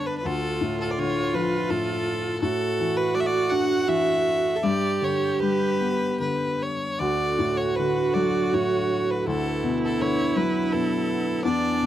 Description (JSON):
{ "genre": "celtic folk, Celtic slow air", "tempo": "75-84 BPM", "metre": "3/4", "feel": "rubato", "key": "unclear", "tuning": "A4 = 440 Hz", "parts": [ { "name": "clear fiddle", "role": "melody", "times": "0.0-11.9 s", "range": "A4 to F#5", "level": "-28 LUFS", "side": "left 1 dB", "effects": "none" }, { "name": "clear viola", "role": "second line", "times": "0.0-11.9 s", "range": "D4 to A4", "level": "-26 LUFS", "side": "right 6 dB", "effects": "none" }, { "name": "felt-muted upright piano", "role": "accompaniment", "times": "0.0-11.9 s", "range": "D2 to D4", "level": "-26 LUFS", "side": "left 5 dB", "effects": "none" }, { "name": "glass harmonica", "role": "sustained chords", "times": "7.3-11.9 s", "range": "D4 to G#5", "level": "-32 LUFS", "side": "equal", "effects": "none" } ], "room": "light reverb", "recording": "dry, close 1970s-style studio recording", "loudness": "-22 LUFS", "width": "side -11 dB against mid", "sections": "0.0-11.9 A section", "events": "none", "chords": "0.2 Dm; 2.4 Asus4; 4.6 G; 7.0 D; 9.3 Bm/D" }